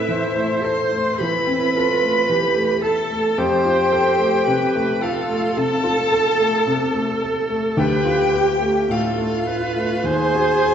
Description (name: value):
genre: classical, slow romantic movement for piano quartet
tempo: 54 BPM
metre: 4/4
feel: rubato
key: unclear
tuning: A4 = 444 Hz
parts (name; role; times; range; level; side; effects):
- rich violin; melody; 0.0-10.7 s; E5 to C6; -24 LUFS; left 5 dB; none
- rich cello; second line; 0.0-10.7 s; E4 to C5; -22 LUFS; right 3 dB; none
- rich viola; accompaniment; 0.0-10.7 s; E4 to C5; -23 LUFS; right 1 dB; none
- warm baby grand piano; accompaniment; 0.0-10.7 s; D2 to B#4; -22 LUFS; left 1 dB; none
room: wet recital hall reverb, RT60 1.4 s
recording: heard from further back in the room, nothing above 7.9 kHz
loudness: -17 LUFS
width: side -8 dB against mid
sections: 0.0-10.7 A section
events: none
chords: 0.0 Am; 3.4 F; 7.8 Bm7b5/D; 10.1 D#m6